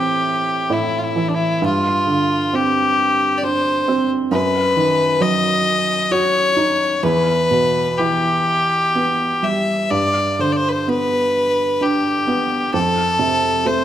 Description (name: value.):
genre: celtic folk.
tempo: 61-68 BPM.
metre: 3/4.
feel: rubato.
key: unclear.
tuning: A4 = 440 Hz.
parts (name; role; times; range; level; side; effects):
clear fiddle; melody; 0.0-13.8 s; D4 to E5; -17 LUFS; left 2 dB; none.
felt-muted upright piano; accompaniment; 0.0-13.8 s; E2 to F#4; -20 LUFS; right 3 dB; none.
room: moderate recital hall reverb, RT60 1.5 s.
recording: none.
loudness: -15 LUFS.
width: side -11 dB against mid.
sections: 0.0-13.8 A section.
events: none.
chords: 0.0 Am; 1.6 Gsus4; 4.3 B/F#; 7.0 Em; 9.9 G; 12.7 F.